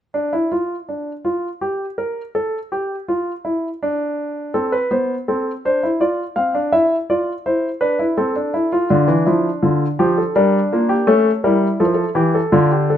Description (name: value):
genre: classical, baroque-style 3-part fugue for grand piano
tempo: 82 BPM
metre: 3/4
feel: straight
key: unclear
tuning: A4 = 438 Hz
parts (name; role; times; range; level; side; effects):
- warm concert grand piano; solo; 0.1-13.0 s; D3 to F5; -16 LUFS; equal; none
room: moderate stone room reverb, RT60 0.9 s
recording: none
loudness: -16 LUFS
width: side -10 dB against mid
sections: 0.1-13.0 A section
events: none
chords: 0.1 N.C.; 4.5 Am; 6.0 Dm/F; 6.7 E5; 8.2 Am/C; 8.9 Dm; 10.3 Gm; 11.1 A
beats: | 0.14 0.89 1.62 | 2.35 3.08 3.81 | 4.54 5.28 6.00 | 6.72 7.45 8.17 | 8.89 9.62 10.35 | 11.08 11.80 12.54